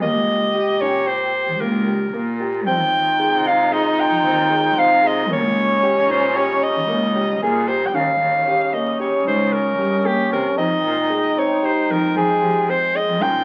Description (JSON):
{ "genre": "contemporary instrumental, chamber music in an uneven meter", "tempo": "114 BPM", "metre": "5/4", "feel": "straight", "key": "Eb mixolydian", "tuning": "A4 = 440 Hz", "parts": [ { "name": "warm soprano saxophone", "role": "melody", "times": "0.0-13.4 s", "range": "G4 to G5", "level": "-21 LUFS", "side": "equal", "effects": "none" }, { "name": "French horn with straight mute", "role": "second line", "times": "0.0-13.4 s", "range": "Db4 to G4", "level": "-25 LUFS", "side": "equal", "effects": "none" }, { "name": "felt-muted upright piano", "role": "arpeggios", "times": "0.0-13.4 s", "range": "Bb3 to Ab4", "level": "-28 LUFS", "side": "equal", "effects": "none" }, { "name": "warm cello", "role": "bass", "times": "0.0-13.4 s", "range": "Db2 to F3", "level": "-28 LUFS", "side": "equal", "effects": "none" }, { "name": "warm woodwind section", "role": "sustained chords", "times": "2.7-13.4 s", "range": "Db3 to G5", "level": "-34 LUFS", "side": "equal", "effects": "none" } ], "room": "wet studio reverb, RT60 0.6 s", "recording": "very old 78 rpm record, vinyl crackle", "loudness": "-19 LUFS", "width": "mono", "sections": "0.0-7.9 A section; 7.9-13.4 B section", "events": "none", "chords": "0.0 Eb7; 2.7 Fm7; 5.3 Eb7; 10.6 Fm9", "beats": "| 0.02 0.54 1.07 1.60 2.13 | 2.66 3.19 3.72 4.25 4.77 | 5.30 5.83 6.36 6.88 7.41 | 7.94 8.47 8.99 9.52 10.05 | 10.58 11.10 11.63 12.16 12.68 | 13.21" }